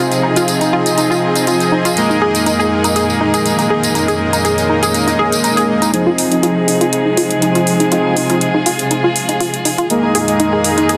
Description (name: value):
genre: progressive house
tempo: 121 BPM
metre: 4/4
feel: straight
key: F minor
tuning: A4 = 443 Hz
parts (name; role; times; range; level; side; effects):
- rich chamber string section; sustained chords; 0.0-11.0 s; F2 to Ab4; -21 LUFS; equal; low-pass filter
- unison pluck; arpeggios; 0.0-11.0 s; Eb4 to Ab4; -20 LUFS; equal; digital delay
- soft supersaw; stabs; 0.0-11.0 s; F3 to Eb5; -18 LUFS; equal; low-pass filter, digital delay
- electronic hi-hat and tambourine; drums; 0.1-11.0 s; none; -22 LUFS; equal; overdrive
room: light reverb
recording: dense, heavily limited modern master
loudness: -14 LUFS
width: mono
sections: 0.0-5.9 A section; 5.9-11.0 B section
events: build-up 5.9-11.0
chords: 0.0 Fm7; 2.0 Ebsus4/F; 5.9 Fm7; 9.9 Ebsus4/F